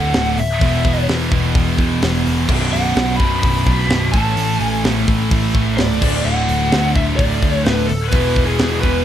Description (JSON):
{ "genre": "hard rock", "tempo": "128 BPM", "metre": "4/4", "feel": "straight", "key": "unclear", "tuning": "A4 = 440 Hz", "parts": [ { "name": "lead guitar through a small cranked amp", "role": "melody", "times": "0.0-9.0 s", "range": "G#4 to B5", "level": "-21 LUFS", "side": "left 1 dB", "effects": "overdrive, slapback echo" }, { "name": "distorted electric guitar", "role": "riff", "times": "0.0-9.0 s", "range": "B1 to A3", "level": "-23 LUFS", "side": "right 8 dB", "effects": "overdrive" }, { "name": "heavy high-gain guitar", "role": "riff", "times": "0.0-9.0 s", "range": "B1 to A4", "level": "-24 LUFS", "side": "equal", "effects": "distortion" }, { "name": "scooped high-gain guitar", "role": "riff", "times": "0.0-9.0 s", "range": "B1 to A3", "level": "-24 LUFS", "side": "left 9 dB", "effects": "distortion" }, { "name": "picked electric bass", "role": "bass", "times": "0.0-9.0 s", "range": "B0 to E2", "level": "-20 LUFS", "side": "equal", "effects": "none" }, { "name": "tight metal drum kit", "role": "drums", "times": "0.1-8.9 s", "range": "crash cymbal, hi-hat, kick drum, snare drum", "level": "-19 LUFS", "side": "equal", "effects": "none" } ], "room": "light reverb", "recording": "none", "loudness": "-14 LUFS", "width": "side -10 dB against mid", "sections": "0.0-9.0 A section", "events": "none", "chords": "0.0 D; 0.6 E; 2.5 Bm; 4.1 A; 6.0 D; 8.1 E" }